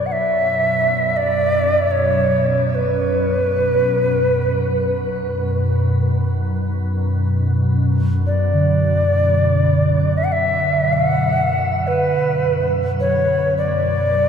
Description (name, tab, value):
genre	world meditative, free-time meditation music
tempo	free time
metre	none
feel	none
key	B minor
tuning	A4 = 440 Hz
part	Native American-style cedar flute	melody	0.0-14.3 s	B4 to F#5	-18 LUFS	equal	shimmer reverb, diffuse ambient delay
part	soft additive organ-like pad	drone	0.0-14.3 s	B1 to F#2	-19 LUFS	equal	ensemble chorus, built-in reverb
part	bronze singing bowl	texture	8.5-14.3 s	D3	-23 LUFS	right 2 dB	none
room	wet cathedral reverb, RT60 5.4 s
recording	dreamy mix soaked in reverb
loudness	-15 LUFS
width	side -7 dB against mid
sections	0.0-14.3 A section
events	none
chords	none